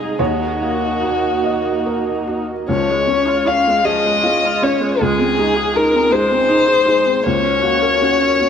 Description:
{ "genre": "neoclassical piano and strings", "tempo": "47-54 BPM (dotted quarters)", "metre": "6/8", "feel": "rubato", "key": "Db major", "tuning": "A4 = 440 Hz", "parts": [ { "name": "dark violin", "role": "melody", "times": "0.0-8.5 s", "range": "Gb4 to F5", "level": "-16 LUFS", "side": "left 3 dB", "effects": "none" }, { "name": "dark viola", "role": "accompaniment", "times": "0.0-8.5 s", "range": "F3 to Bb4", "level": "-23 LUFS", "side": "right 2 dB", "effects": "none" }, { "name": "felt-muted upright piano", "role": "accompaniment", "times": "0.0-8.5 s", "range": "C2 to Eb5", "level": "-21 LUFS", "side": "equal", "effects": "none" }, { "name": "warm analog pad", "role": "sustained chords", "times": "0.0-8.5 s", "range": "Ab3 to Eb5", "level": "-25 LUFS", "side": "right 3 dB", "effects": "chorus" } ], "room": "moderate plate reverb, RT60 2.6 s", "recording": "heard from further back in the room", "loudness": "-14 LUFS", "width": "side -8 dB against mid", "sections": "0.0-2.7 A section; 2.7-8.5 B section", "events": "none", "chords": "0.2 Ebm7; 2.7 Db; 5.0 Ab/Db; 7.2 Gb/Db" }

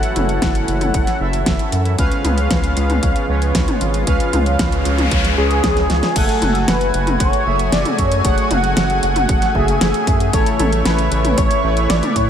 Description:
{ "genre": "synthwave", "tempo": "115 BPM", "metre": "4/4", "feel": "straight", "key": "F# minor", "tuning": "A4 = 442 Hz", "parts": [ { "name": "lush unison pad", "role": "sustained chords", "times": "0.0-12.3 s", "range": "C#3 to G#5", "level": "-23 LUFS", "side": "equal", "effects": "chorus, sidechain pumping, shimmer reverb" }, { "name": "analog synth brass", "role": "stabs", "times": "0.0-12.3 s", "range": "A3 to G#5", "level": "-22 LUFS", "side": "right 1 dB", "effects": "chorus, cassette tape, ping-pong delay, shimmer reverb" }, { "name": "pop drum kit", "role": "drums", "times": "0.0-12.3 s", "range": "crash cymbal, hi-hat, snare drum, toms", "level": "-21 LUFS", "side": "equal", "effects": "studio reverb" }, { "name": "round analog bass", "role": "bass", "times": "0.2-12.3 s", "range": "F#1 to A2", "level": "-20 LUFS", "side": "equal", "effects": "tube saturation, sidechain pumping" }, { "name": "electronic kick drum", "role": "drums", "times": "0.4-12.3 s", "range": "none", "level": "-20 LUFS", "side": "equal", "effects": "studio reverb" }, { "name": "noise sweep", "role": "sound effects", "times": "4.5-6.2 s", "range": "none", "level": "-25 LUFS", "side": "left 3 dB", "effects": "none" }, { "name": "wide unison lead", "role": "melody", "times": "5.4-12.3 s", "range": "G#4 to F#5", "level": "-19 LUFS", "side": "equal", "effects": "wide subtle chorus, ping-pong delay, shimmer reverb" } ], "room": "light reverb", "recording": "none", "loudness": "-14 LUFS", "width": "side -9 dB against mid", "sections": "0.0-6.2 A section; 6.2-12.3 B section", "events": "noise sweep 4.5-6.2; drum fill 5.8-6.2", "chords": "0.0 F#m7; 2.0 C#7; 6.2 F#madd9; 10.3 A" }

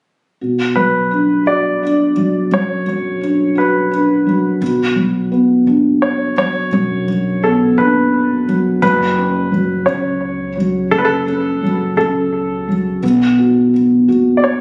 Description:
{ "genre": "pop", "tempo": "57 BPM (dotted quarters)", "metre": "6/8", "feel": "straight", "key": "B minor", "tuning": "A4 = 438 Hz", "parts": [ { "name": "felt-muted upright piano", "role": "accompaniment", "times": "0.4-14.6 s", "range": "F#2 to F#4", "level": "-16 LUFS", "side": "equal", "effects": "none" }, { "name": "clear baby grand piano", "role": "melody", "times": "0.8-14.6 s", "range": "A4 to D5", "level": "-20 LUFS", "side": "equal", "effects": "digital delay" }, { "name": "upright bass", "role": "bass", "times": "4.6-14.6 s", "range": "F#1 to C#2", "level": "-30 LUFS", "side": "equal", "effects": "none" } ], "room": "light reverb, small room ambience", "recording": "recorded on a phone in the room, studio reverb, nothing above 11.0 kHz", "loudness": "-15 LUFS", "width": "mono", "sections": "0.4-4.6 A section; 4.6-14.6 B section", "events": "none", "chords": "0.4 Bmadd9; 8.8 F#m; 13.0 B5" }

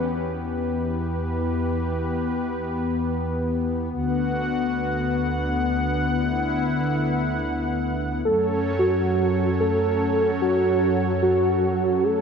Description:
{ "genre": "synthwave", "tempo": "free time", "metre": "none", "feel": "none", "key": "B minor", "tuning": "A4 = 440 Hz", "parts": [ { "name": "brassy analog pad", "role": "sustained chords", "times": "0.0-12.2 s", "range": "D2 to F#5", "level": "-23 LUFS", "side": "left 1 dB", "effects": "chorus" }, { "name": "wide unison lead", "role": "melody", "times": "8.3-12.2 s", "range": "F#4 to A4", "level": "-21 LUFS", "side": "right 1 dB", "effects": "cassette tape, ping-pong delay" } ], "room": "wet plate reverb, RT60 3.4 s", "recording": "bright 1980s-style digital production", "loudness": "-21 LUFS", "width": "side -6 dB against mid", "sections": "0.0-12.2 A section", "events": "none", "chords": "0.0 Em; 3.9 Bm/D; 8.3 F#m" }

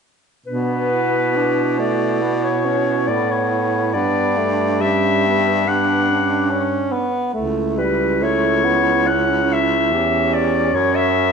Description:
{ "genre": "classical, lyrical piece for single-reed quartet", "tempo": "70 BPM", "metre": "4/4", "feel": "uneven beats, rubato", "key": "B minor", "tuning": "A4 = 440 Hz", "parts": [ { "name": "warm clarinet", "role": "melody", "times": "0.5-11.3 s", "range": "B4 to F#5", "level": "-19 LUFS", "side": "left 6 dB", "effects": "none" }, { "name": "bright alto saxophone", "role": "second line", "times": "0.5-11.3 s", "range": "B3 to G4", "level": "-24 LUFS", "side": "right 13 dB", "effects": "none" }, { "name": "warm tenor saxophone", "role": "accompaniment", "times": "0.5-11.3 s", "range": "G3 to D4", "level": "-22 LUFS", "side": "right 1 dB", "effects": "none" }, { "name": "bright baritone saxophone", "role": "bass", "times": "0.5-11.3 s", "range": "C#2 to B2", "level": "-22 LUFS", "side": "right 2 dB", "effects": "none" } ], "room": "moderate recital hall reverb, RT60 1.4 s", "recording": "nothing above 10.5 kHz", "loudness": "-16 LUFS", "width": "side -6 dB against mid", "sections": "0.5-11.3 A section", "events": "none", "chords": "0.5 Bm; 3.9 Gmaj7; 7.4 C#m7b5; 10.7 F#7(no3)" }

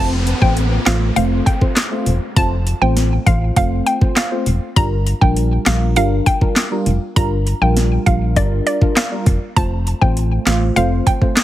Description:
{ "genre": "dancehall", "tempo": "100 BPM", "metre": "4/4", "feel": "straight", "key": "unclear", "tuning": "A4 = 440 Hz", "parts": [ { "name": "hollow square pluck", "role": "melody", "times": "0.0-11.2 s", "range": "D5 to Bb5", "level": "-21 LUFS", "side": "right 1 dB", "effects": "chorus, digital delay" }, { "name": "deep mellow chord stab", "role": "accompaniment", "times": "0.0-11.4 s", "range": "G3 to C5", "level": "-21 LUFS", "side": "equal", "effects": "chorus, sidechain pumping" }, { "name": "organ-like FM bass", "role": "bass", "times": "0.0-11.0 s", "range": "E1 to Bb1", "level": "-17 LUFS", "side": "equal", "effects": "none" }, { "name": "downlifter", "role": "sound effects", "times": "0.0-4.8 s", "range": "none", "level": "-27 LUFS", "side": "equal", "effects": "none" }, { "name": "island pop drum kit", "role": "drums", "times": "0.3-11.4 s", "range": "handclaps, hi-hat, kick drum, snare drum", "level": "-16 LUFS", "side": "equal", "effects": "overdrive" } ], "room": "digital ambience", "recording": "heavily compressed radio sound", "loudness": "-14 LUFS", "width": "side -13 dB against mid", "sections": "0.0-11.4 A section", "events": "none", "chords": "0.0 F; 4.8 Gm7; 9.6 F" }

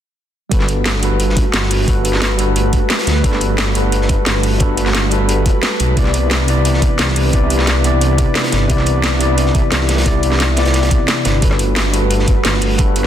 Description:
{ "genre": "liquid drum and bass", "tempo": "176 BPM", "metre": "4/4", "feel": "straight", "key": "G major", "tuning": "A4 = 440 Hz", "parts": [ { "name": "tine electric piano", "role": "accompaniment", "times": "0.5-13.1 s", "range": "C3 to D5", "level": "-19 LUFS", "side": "left 1 dB", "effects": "fast stereo tremolo, tape echo" }, { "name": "airy breathy pad", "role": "sustained chords", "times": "0.5-13.1 s", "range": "E3 to B4", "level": "-24 LUFS", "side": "right 1 dB", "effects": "chorus, sidechain pumping" }, { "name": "swelling detuned saw bass", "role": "bass", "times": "0.5-13.1 s", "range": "G1 to D2", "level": "-17 LUFS", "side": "equal", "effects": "none" }, { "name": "crunchy breakbeat drum kit", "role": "drums", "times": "0.5-13.1 s", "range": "hi-hat, snare drum", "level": "-25 LUFS", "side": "equal", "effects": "high-pass filter on hats, high-pass filter on snare, high-pass filter on room" }, { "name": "electronic kick drum", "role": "drums", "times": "0.5-12.9 s", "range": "none", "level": "-16 LUFS", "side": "equal", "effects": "none" }, { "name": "garage drum kit", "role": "drums", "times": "0.5-13.1 s", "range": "hi-hat, rim click, snare drum", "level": "-20 LUFS", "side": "equal", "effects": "none" } ], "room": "light reverb, small room ambience", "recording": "dense, heavily limited modern master", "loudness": "-12 LUFS", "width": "side -10 dB against mid", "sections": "0.5-13.1 A section", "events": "none", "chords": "0.5 Gmaj9; 6.0 Cmaj9; 11.4 Gmaj9" }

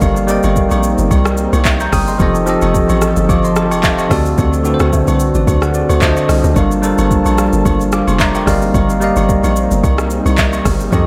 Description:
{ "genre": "amapiano", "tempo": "110 BPM", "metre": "4/4", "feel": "swing 55% on 16ths", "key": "unclear", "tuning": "A4 = 440 Hz", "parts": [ { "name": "bell-like tine electric piano", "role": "accompaniment", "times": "0.0-11.1 s", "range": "D3 to G6", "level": "-18 LUFS", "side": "equal", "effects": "analog delay" }, { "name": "warm analog pad", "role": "sustained chords", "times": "0.0-11.1 s", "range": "D3 to A5", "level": "-25 LUFS", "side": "equal", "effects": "chorus, sidechain pumping" }, { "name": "hollow log drum bass", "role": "bass", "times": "0.0-11.1 s", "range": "F1 to F2", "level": "-19 LUFS", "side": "equal", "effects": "none" }, { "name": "smooth R&B drum kit", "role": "drums", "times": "0.0-11.1 s", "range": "handclaps, hi-hat, kick drum, rim click, shaker", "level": "-20 LUFS", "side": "equal", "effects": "none" }, { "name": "agogo bells and woodblock", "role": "percussion", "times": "0.0-11.1 s", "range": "none", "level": "-26 LUFS", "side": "equal", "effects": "none" } ], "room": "light reverb", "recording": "echo-heavy mix", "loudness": "-13 LUFS", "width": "mono", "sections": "0.0-11.1 A section", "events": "none", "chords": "0.0 Cm11/G; 2.2 F9; 4.1 D7; 6.0 D7b9; 6.6 Gm9; 8.5 Cm11/G" }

